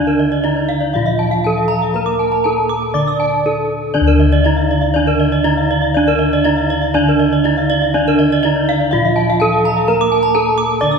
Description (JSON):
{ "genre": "Balinese gamelan", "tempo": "120 BPM", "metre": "4/4", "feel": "straight", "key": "D pelog", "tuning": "A4 = 441 Hz", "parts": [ { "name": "gamelan-type bronze metallophone", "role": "melody", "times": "0.0-11.0 s", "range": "D4 to D5", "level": "-17 LUFS", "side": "right 2 dB", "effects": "none" }, { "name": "gamelan-type bronze metallophone", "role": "accompaniment", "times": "0.0-11.0 s", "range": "D3 to D4", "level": "-22 LUFS", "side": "right 2 dB", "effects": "none" }, { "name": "gamelan-type bronze metallophone", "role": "arpeggios", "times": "0.0-10.9 s", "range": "D5 to D6", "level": "-20 LUFS", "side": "left 4 dB", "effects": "none" }, { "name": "gamelan-type bossed gongs", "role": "bass", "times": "0.0-11.0 s", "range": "D2 to Bb4-20c", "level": "-20 LUFS", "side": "left 2 dB", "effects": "none" }, { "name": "gamelan-type bronze metallophone", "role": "arpeggios", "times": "0.1-11.0 s", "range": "Bb4-20c to Eb6+20c", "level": "-20 LUFS", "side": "right 4 dB", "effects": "none" } ], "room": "wet concert hall reverb, RT60 2.1 s", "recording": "recorded in a church or concert hall", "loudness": "-12 LUFS", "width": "side -5 dB against mid", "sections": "0.0-11.0 A section", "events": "none", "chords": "none" }